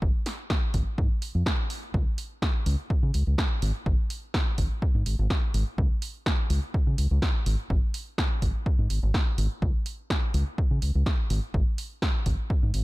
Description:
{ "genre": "filtered disco house", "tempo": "125 BPM", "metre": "4/4", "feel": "swing 53% on 16ths", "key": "Db major", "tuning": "A4 = 441 Hz", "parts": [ { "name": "fingered electric bass", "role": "bass", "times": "0.0-12.8 s", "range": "Ab1 to Db3", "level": "-25 LUFS", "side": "equal", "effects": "sidechain pumping" }, { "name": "electronic kick drum", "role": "drums", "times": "0.0-12.6 s", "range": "none", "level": "-26 LUFS", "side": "equal", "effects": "none" }, { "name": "punchy analog drum machine", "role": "drums", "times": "0.3-12.8 s", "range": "hi-hat, snare drum", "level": "-33 LUFS", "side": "equal", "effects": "sidechain pumping on hats" } ], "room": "little or no reverb", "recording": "dark, warm production", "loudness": "-24 LUFS", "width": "side -20 dB against mid", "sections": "0.0-12.8 A section", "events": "none", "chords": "none" }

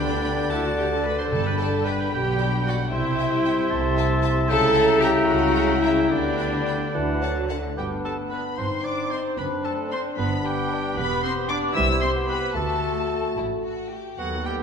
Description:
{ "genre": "quick classical-period movement for symphony orchestra", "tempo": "75 BPM (dotted quarters)", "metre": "6/8", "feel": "straight", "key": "G major", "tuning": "A4 = 439 Hz", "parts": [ { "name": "warm studio violin section", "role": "melody", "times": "0.0-14.5 s", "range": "D5 to E6", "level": "-31 LUFS", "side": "left 5 dB", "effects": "none" }, { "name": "mellow clarinet", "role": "second line", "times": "0.0-14.6 s", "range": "D4 to E5", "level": "-31 LUFS", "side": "left 2 dB", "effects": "none" }, { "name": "rich chamber violin section", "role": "second line", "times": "0.0-14.2 s", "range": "D4 to B5", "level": "-37 LUFS", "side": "left 2 dB", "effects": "none" }, { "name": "silver concert flute", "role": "second line", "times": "0.0-14.5 s", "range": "F#5 to E6", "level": "-33 LUFS", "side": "left 2 dB", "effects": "none" }, { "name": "warm cor anglais", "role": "second line", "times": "0.0-14.6 s", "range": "F#4 to A5", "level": "-32 LUFS", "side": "right 3 dB", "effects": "none" }, { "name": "mellow bassoon", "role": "accompaniment", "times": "0.0-14.6 s", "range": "C3 to C4", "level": "-30 LUFS", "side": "right 1 dB", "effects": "none" }, { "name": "rich chamber viola section", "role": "accompaniment", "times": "0.0-14.6 s", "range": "F#3 to C5", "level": "-27 LUFS", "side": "right 1 dB", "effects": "none" }, { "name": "mellow French horn section", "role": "sustained chords", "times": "0.0-14.6 s", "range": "G3 to A4", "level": "-30 LUFS", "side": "left 4 dB", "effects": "none" }, { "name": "rich studio cello section", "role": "bass", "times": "0.0-14.6 s", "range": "C2 to D3", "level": "-30 LUFS", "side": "right 1 dB", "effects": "none" }, { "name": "rich studio double bass section", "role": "bass", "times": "0.0-14.6 s", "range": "E1 to D#2", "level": "-30 LUFS", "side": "right 2 dB", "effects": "none" }, { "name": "timpani", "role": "percussion", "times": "0.0-2.1 s", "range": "G2 to D3", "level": "-33 LUFS", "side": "left 2 dB", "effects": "none" } ], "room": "wet concert hall reverb, RT60 2.0 s", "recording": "minimal, uncompressed stereo recording", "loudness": "-21 LUFS", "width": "side -6 dB against mid", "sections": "0.0-7.8 A section; 7.8-14.6 B section", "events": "none", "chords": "0.0 G/D; 0.5 D; 1.3 G; 2.1 G/B; 2.9 C; 3.7 Am/C; 4.5 C#dim7; 6.1 G/D; 6.9 D; 7.8 G; 8.6 Cm/G; 9.4 D7/F#; 10.2 G; 11.0 Em; 11.8 C5; 12.6 D" }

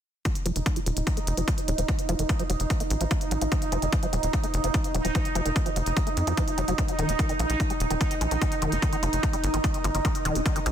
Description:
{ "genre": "psychedelic trance", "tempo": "147 BPM", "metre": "4/4", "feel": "straight", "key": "unclear", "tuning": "A4 = 440 Hz", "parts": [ { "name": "bubbling stepped-filter texture", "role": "sustained chords", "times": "0.6-10.7 s", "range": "Eb4", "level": "-30 LUFS", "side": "right 3 dB", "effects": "chorus, built-in reverb, sidechain pumping" }, { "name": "liquid acid bass", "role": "riff", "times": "0.3-10.7 s", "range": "Eb3 to Eb4", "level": "-32 LUFS", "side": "equal", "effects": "chorus, auto-pan, sidechain pumping, ping-pong delay" }, { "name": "electronic hi-hat", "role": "drums", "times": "0.3-10.7 s", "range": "none", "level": "-35 LUFS", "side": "equal", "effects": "studio reverb" }, { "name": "electronic kick drum", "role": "drums", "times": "0.3-10.5 s", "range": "none", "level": "-26 LUFS", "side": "equal", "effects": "overdrive, studio reverb" }, { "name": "ethereal airy pad", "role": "texture", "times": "1.0-10.7 s", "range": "Eb4 to F5", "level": "-45 LUFS", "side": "equal", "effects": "none" }, { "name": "tight sequencer bass", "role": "bass", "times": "0.5-10.7 s", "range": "Eb1 to F2", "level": "-28 LUFS", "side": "equal", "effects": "none" } ], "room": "digital ambience", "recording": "dense, heavily limited modern master", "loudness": "-23 LUFS", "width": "side -10 dB against mid", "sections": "0.3-10.7 A section", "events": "filter sweep on acid bass 0.3-10.7", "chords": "0.3 F5; 6.8 Eb5" }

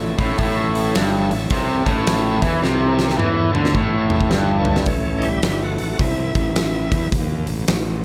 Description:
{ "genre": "blues rock power trio and southern rock", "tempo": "107 BPM", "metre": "4/4", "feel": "swing 64% on 8ths", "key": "A mixolydian", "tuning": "A4 = 439 Hz", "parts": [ { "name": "bright tonewheel organ", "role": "sustained chords", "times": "0.0-7.1 s", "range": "E3 to E5", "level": "-30 LUFS", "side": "equal", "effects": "slow rotary speaker, overdrive" }, { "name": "raw garage guitar", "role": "riff", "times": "0.0-4.9 s", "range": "G2 to E3", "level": "-22 LUFS", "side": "equal", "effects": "overdrive" }, { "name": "fuzz fingered electric bass", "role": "bass", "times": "0.0-8.0 s", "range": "G1 to E2", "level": "-26 LUFS", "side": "equal", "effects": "overdrive" }, { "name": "huge arena drum kit", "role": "drums", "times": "0.2-7.8 s", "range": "hi-hat, kick drum, snare drum, toms", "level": "-24 LUFS", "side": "equal", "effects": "none" } ], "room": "light reverb", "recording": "none", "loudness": "-19 LUFS", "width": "mono", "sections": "0.0-4.9 A section; 4.9-8.0 B section", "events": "drum fill 2.6-4.9; tonewheel organ solo 4.9-8.0", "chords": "0.0 A" }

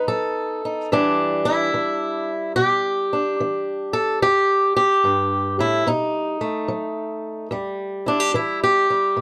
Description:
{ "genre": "acoustic country blues, solo or duo", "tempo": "73 BPM", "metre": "4/4", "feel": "swing 67% on 8ths", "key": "E minor", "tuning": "A4 = 441 Hz", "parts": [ { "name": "fingerpicked swing-style acoustic guitar", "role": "solo", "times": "0.0-9.2 s", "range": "E2 to A4", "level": "-21 LUFS", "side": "equal", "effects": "none" } ], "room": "moderate booth ambience, RT60 0.2 s", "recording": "none", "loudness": "-21 LUFS", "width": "mono", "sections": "0.0-7.5 A section; 7.5-9.2 B section", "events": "steel-string acoustic guitar solo 7.5-9.2", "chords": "0.0 B7; 0.9 Em7; 5.9 B7; 7.5 Em7" }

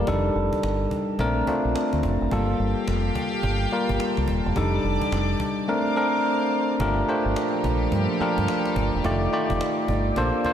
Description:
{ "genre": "R&B, new jack swing", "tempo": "107 BPM", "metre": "4/4", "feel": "swing 62% on 16ths", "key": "G minor", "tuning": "A4 = 443 Hz", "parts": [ { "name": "bell-like tine electric piano", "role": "accompaniment", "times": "0.0-10.5 s", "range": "G3 to D5", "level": "-23 LUFS", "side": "left 1 dB", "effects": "shimmer reverb, slapback echo" }, { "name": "deep dub fingered electric bass", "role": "bass", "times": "0.0-10.5 s", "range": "Eb1 to G2", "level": "-26 LUFS", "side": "right 1 dB", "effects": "none" }, { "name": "cajon", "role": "drums", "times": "0.1-10.5 s", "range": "none", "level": "-35 LUFS", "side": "equal", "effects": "none" }, { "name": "warm studio string section", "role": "sustained chords", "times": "2.3-10.5 s", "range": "Bb2 to D6", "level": "-31 LUFS", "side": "right 3 dB", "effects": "shimmer reverb" } ], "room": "wet lush hall reverb, RT60 1.8 s, small room ambience", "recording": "big arena sound", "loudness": "-21 LUFS", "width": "side -9 dB against mid", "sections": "0.0-6.8 A section; 6.8-10.5 B section", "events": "none", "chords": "0.1 F13; 1.2 Bbmaj9; 2.3 Gm9; 4.6 F13; 5.7 Bbmaj9; 6.8 Gm9; 9.0 F13" }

